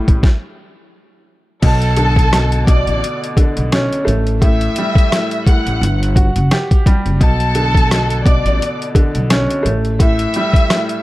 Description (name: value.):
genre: hip hop, boom-bap hip-hop.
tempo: 86 BPM.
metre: 4/4.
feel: swing 56% on 16ths.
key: B minor.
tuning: A4 = 442 Hz.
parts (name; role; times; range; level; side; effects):
clear upright piano; accompaniment; 0.0-11.0 s; A2 to G4; -20 LUFS; equal; cassette tape, high-pass filter, low-pass filter.
upright bass; bass; 0.1-10.2 s; F#1 to B1; -17 LUFS; equal; none.
boom bap sampler-style drum kit; drums; 0.1-11.0 s; crash cymbal, hi-hat, kick drum, rim click, snare drum; -13 LUFS; equal; none.
rich studio violin section; melody; 1.6-11.0 s; A4 to F#6; -20 LUFS; equal; high-pass filter, low-pass filter, tape echo.
room: little or no reverb.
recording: dark, warm production.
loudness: -12 LUFS.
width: side -17 dB against mid.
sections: 0.0-1.6 A section; 1.6-11.0 B section.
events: stop 0.2-1.6.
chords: 0.2 N.C.; 1.6 Bm9; 4.1 A5; 5.8 N.C.; 7.2 Bm9; 9.7 A5.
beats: 0.23 0.93 | 1.63 2.32 3.02 3.72 | 4.42 5.12 5.81 6.51 | 7.21 7.91 8.60 9.30 | 10.00 10.70.